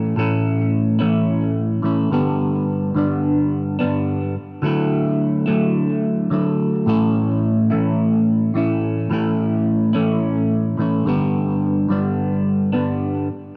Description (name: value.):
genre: rock.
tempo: 107 BPM.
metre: 4/4.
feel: straight.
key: unclear.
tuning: A4 = 442 Hz.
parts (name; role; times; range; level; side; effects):
semi-hollow electric guitar; solo; 0.0-13.3 s; G2 to E4; -19 LUFS; equal; phaser, tape echo.
room: moderate echo chamber reverb, RT60 2.2 s.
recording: none.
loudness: -19 LUFS.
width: mono.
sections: 0.0-13.6 A section.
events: none.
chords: 0.0 A; 2.1 G; 4.6 Dadd9; 6.9 A; 11.1 G.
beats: | 0.17 0.73 1.28 1.84 | 2.40 2.96 3.52 4.08 | 4.64 5.20 5.76 6.32 | 6.87 7.43 7.99 8.55 | 9.11 9.67 10.23 10.79 | 11.34 11.90 12.46 13.02.